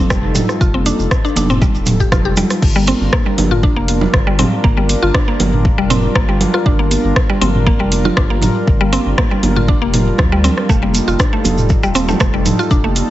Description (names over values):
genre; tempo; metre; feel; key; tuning
afro house; 119 BPM; 4/4; straight; G minor; A4 = 441 Hz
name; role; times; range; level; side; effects
warm analog pad; sustained chords; 0.0-13.1 s; G3 to Bb4; -21 LUFS; equal; chorus, sidechain pumping
mallet-like synth pluck; arpeggios; 0.0-12.9 s; G3 to G4; -19 LUFS; left 1 dB; chorus, sidechain pumping, digital delay
round analog bass; bass; 0.0-13.0 s; Eb1 to D2; -19 LUFS; equal; sidechain pumping
afro-pop drum kit; drums; 0.1-13.1 s; crash cymbal, hi-hat, rim click, toms; -20 LUFS; equal; studio reverb
electronic kick drum; drums; 0.1-12.8 s; none; -15 LUFS; equal; studio reverb
maracas; percussion; 0.1-2.6, 10.7-13.1 s; none; -28 LUFS; right 4 dB; none
congas; percussion; 0.3-13.1 s; none; -20 LUFS; right 3 dB; none
room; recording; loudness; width
light reverb, digital ambience; heavily compressed radio sound, nothing above 7.9 kHz; -12 LUFS; side -14 dB against mid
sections
0.0-2.6 A section; 2.6-13.1 B section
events
drop 2.6-13.1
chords
0.0 F9; 2.6 Gm7; 10.7 F9